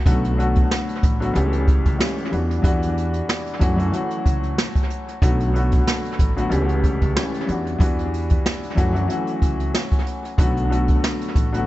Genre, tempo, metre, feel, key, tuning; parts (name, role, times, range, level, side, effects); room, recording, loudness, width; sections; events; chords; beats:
hip hop, boom-bap hip-hop; 93 BPM; 4/4; swing 56% on 16ths; B minor; A4 = 440 Hz
warm upright piano; accompaniment; 0.1-11.7 s; C#2 to G4; -23 LUFS; left 1 dB; high-pass filter, low-pass filter, analog delay
upright bass; bass; 0.1-11.6 s; A1 to F#2; -23 LUFS; equal
jazz brush drum kit; drums; 0.1-11.7 s; hi-hat, kick drum, snare drum; -20 LUFS; equal
small room ambience; echo-heavy mix, nothing above 7.9 kHz; -18 LUFS; side -16 dB against mid
0.0-11.7 A section
0.1 Bm7; 1.4 A7/C#; 2.3 Em9; 3.6 F#m7; 5.2 Bm7; 6.5 A7/C#; 7.5 Em9; 8.8 F#m7; 10.4 Bm7
| 0.06 0.70 1.35 2.00 | 2.64 3.29 3.93 4.58 | 5.22 5.87 6.51 7.16 | 7.80 8.45 9.09 9.74 | 10.38 11.03